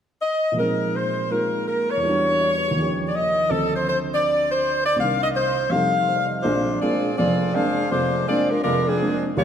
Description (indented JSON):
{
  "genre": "jazz",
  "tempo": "163 BPM",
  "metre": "4/4",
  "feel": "swing 64% on 8ths",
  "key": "Bb mixolydian",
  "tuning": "A4 = 444 Hz",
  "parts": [
    { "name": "clear saxophone section", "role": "melody", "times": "0.2-9.4 s", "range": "F3 to F5", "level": "-21 LUFS", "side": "left 1 dB", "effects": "none" },
    { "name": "dark baby grand piano", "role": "accompaniment", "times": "0.5-9.4 s", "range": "F1 to F5", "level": "-24 LUFS", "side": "right 1 dB", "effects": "none" }
  ],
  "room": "wet concert hall reverb, RT60 2.3 s",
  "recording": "none",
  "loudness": "-19 LUFS",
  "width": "side -8 dB against mid",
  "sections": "0.6-6.4 A section; 6.4-9.4 B section",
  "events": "none",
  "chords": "0.0 N.C.; 0.6 Bb7sus4; 2.0 Em7; 2.8 Eb9; 3.5 Dm7; 5.0 Cm7; 5.7 F7; 6.4 Bb9"
}